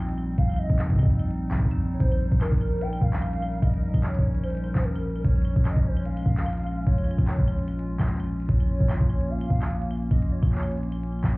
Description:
IDM; 148 BPM; 4/4; swing 56% on 16ths; Bb dorian; A4 = 439 Hz
warbly nostalgic lead; melody; 0.0-11.1 s; Bb4 to G5; -36 LUFS; right 1 dB; ensemble chorus, digital delay
warbly tape-like pad; sustained chords; 0.0-11.4 s; G3 to Bb4; -34 LUFS; equal; chorus, built-in reverb, vintage 12-bit sampler grit
warm sub bass; bass; 0.0-11.4 s; Bb1; -26 LUFS; equal
glitchy drum kit; drums; 0.1-11.4 s; claves, handclaps, hi-hat; -40 LUFS; equal; overdrive, small room ambience, digital delay
electronic kick drum; drums; 0.4-11.3 s; -22 LUFS; equal; overdrive, small room ambience
digital ambience; heard muffled through a wall, club reverb, EQ; -22 LUFS; side -24 dB against mid
0.0-11.4 A section
0.0 Cm/Bb; 2.0 Eb7/Bb; 5.2 Db/Bb; 8.5 Bbm

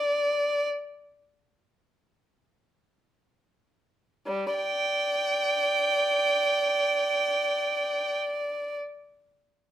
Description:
classical, free, expressive piece for unaccompanied violin; free time; A4 = 438 Hz
warm violin; solo; 0.0-8.8 s; G3 to G5; -24 LUFS; right 1 dB
light reverb; minimal, uncompressed stereo recording; -24 LUFS; side -12 dB against mid
0.0-4.3 A section; 4.3-9.7 B section
slowing down 0.0-4.3

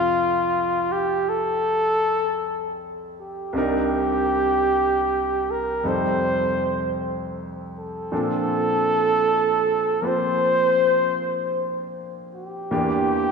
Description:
jazz ballad; 52 BPM; 4/4; swing 66% on 8ths; F major; A4 = 440 Hz
warm flugelhorn; melody; 0.0-13.3 s; F4 to C5; -21 LUFS; equal
clear grand piano; accompaniment; 0.0-13.3 s; C2 to E5; -27 LUFS; equal
wet church reverb, RT60 2.5 s; recorded in a church or concert hall; -20 LUFS; side -5 dB against mid
0.0-13.3 A section
0.0 Fmaj7; 3.5 Cm9; 5.8 F7; 8.1 Bbmaj9; 12.7 Em7b5

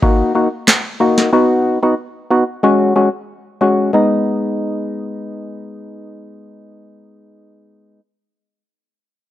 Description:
dancehall; 92 BPM; 4/4; straight; G# minor; A4 = 440 Hz
percussive organ stab; accompaniment; 0.0-8.0 s; G#3 to F#4; -14 LUFS; left 1 dB; chorus
booming analog drum machine; drums; 0.0-1.3 s; handclaps, kick drum, snare drum; -13 LUFS; equal; overdrive
little or no reverb; dry, gritty hardware recording, transformer saturation; -13 LUFS; side -13 dB against mid
0.0-3.9 A section; 3.9-6.5 B section
0.0 D#m; 1.3 B; 2.6 C#sus4; 3.9 G#m

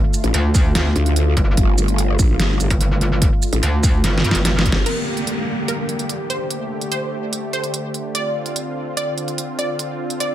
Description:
heavy wobble dubstep; 146 BPM; 4/4; half-time; G minor; A4 = 440 Hz
lush unison pad; sustained chords; 0.0-10.3 s; D3 to G4; -25 LUFS; equal; chorus, sidechain pumping
dubstep drum kit; drums; 0.1-10.3 s; crash cymbal, hi-hat, shaker, snare drum; -22 LUFS; right 1 dB
growl bass; bass; 0.2-4.8 s; G1 to D2; -17 LUFS; equal; chorus, overdrive
metallic wobble bass; bass; 0.3-4.7 s; G1 to G2; -18 LUFS; equal; distortion, chorus, overdrive
electronic kick drum; drums; 0.5-4.7 s; -17 LUFS; equal
wide unison pluck; melody; 4.9-10.3 s; Bb4 to D5; -26 LUFS; right 1 dB; dub echo
downlifter; sound effects; 4.9-8.1 s; -28 LUFS; equal
little or no reverb; -17 LUFS; side -12 dB against mid
0.0-4.9 A section; 4.9-10.3 B section
drop 0.0-4.9; drum fill 4.0-4.9; band accent 4.7
0.0 G5; 4.9 Gm; 6.5 Dsus4; 8.1 Dm7

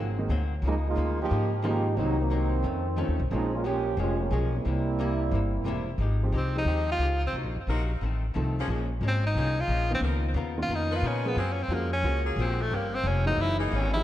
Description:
jazz, big band swing; 179 BPM; 4/4; swing 65% on 8ths; F minor; A4 = 440 Hz
clear trombone section; second line; 0.0-5.8 s; Eb3 to G4; -30 LUFS; right 3 dB; tape echo
archtop guitar, miked and amplified; accompaniment; 0.0-14.0 s; F2 to Bb4; -37 LUFS; left 6 dB
upright bass; bass; 0.0-14.0 s; E1 to Bb2; -28 LUFS; equal
dark baby grand piano; accompaniment; 0.2-14.0 s; Eb3 to A4; -35 LUFS; right 1 dB
bright tenor saxophone; melody; 6.4-14.0 s; Ab3 to F4; -30 LUFS; equal; tape echo
bright saxophone section; sustained chords; 6.7-14.0 s; Fb3 to Cb5; -37 LUFS; left 1 dB
moderate lush hall reverb, RT60 1.9 s, small room ambience; dreamy mix soaked in reverb, cassette tape; -25 LUFS; side -13 dB against mid
0.0-6.0 A section; 6.0-14.0 B section
trombone section solo 0.0-6.0; tenor saxophone solo 6.0-14.0
0.0 Ab9; 0.6 Db69; 2.0 Cm7b5; 2.6 F7b13; 3.3 Bbm7; 4.7 C7; 6.0 Fm9; 7.3 Cm7b5; 8.0 F7; 8.7 Bbm7; 10.0 Db13; 11.4 Gbmaj9; 12.7 Gm7b5; 13.4 Gb13

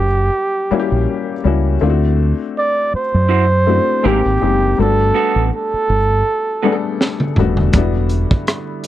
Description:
R&B, neo-soul; 81 BPM; 4/4; swing 56% on 16ths; A4 = 440 Hz
breathy flugelhorn; melody; 0.0-7.3 s; G4 to D5; -17 LUFS; right 2 dB
warm baby grand piano; accompaniment; 0.0-8.9 s; F#3 to A4; -20 LUFS; left 8 dB
deep dub fingered electric bass; bass; 0.0-8.2 s; Eb1 to F#2; -16 LUFS; right 1 dB
electric guitar through a small old amp; second line; 3.3-6.8 s; B3 to C5; -20 LUFS; right 8 dB
crunchy breakbeat drum kit; drums; 7.0-8.9 s; hi-hat, kick drum, rim click, snare drum, toms; -16 LUFS; right 1 dB
tonewheel organ; sustained chords; 7.7-8.9 s; D3 to E4; -28 LUFS; right 3 dB; overdrive, chorus vibrato, slow rotary speaker
little or no reverb; dry, close 1970s-style studio recording; -13 LUFS; side -13 dB against mid
0.0-8.9 A section
drum fill 7.0-7.7
0.0 F#7b9; 1.8 D9; 4.0 G#maj9; 4.8 Gmaj9; 7.7 Em7

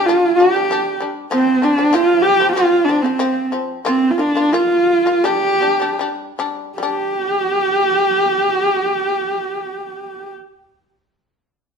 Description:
mongolian traditional, Mongolian folk; 73-98 BPM; 4/4; straight; G yu mode; A4 = 440 Hz
warm horsehead fiddle; melody; 0.0-10.3 s; C4 to G4; -15 LUFS; right 1 dB
shamisen; arpeggios; 0.0-10.4 s; F3 to F4; -23 LUFS; left 5 dB
wet stone room reverb, RT60 1.0 s; band playing live in one room, lossy compression artefacts; -14 LUFS; side -6 dB against mid
0.0-6.8 A section; 6.8-10.1 B section
slowing down 1.3-6.8
0.0 G5; 1.3 F5; 3.9 Bb5; 5.2 G5

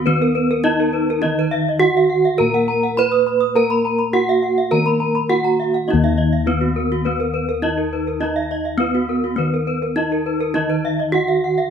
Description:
Balinese gamelan; 103 BPM; 4/4; straight; Eb pelog; A4 = 440 Hz
gamelan-type bronze metallophone; melody; 0.0-11.7 s; Cb4 to Cb5; -19 LUFS; right 2 dB
gamelan-type bronze metallophone; accompaniment; 0.0-5.9, 10.6-11.7 s; Eb3 to Cb4; -25 LUFS; right 2 dB
gamelan-type bronze metallophone; arpeggios; 0.0-11.7 s; Gb4 to Eb6; -26 LUFS; right 1 dB
gamelan-type bossed gongs; bass; 0.0-11.7 s; Eb2 to Bb4; -24 LUFS; left 2 dB
gamelan-type bronze metallophone; arpeggios; 0.1-11.6 s; Bb4 to Cb6; -24 LUFS; left 4 dB
wet stone room reverb, RT60 1.0 s; band playing live in one room; -16 LUFS; side -7 dB against mid
0.0-5.9 A section; 5.9-11.7 A section

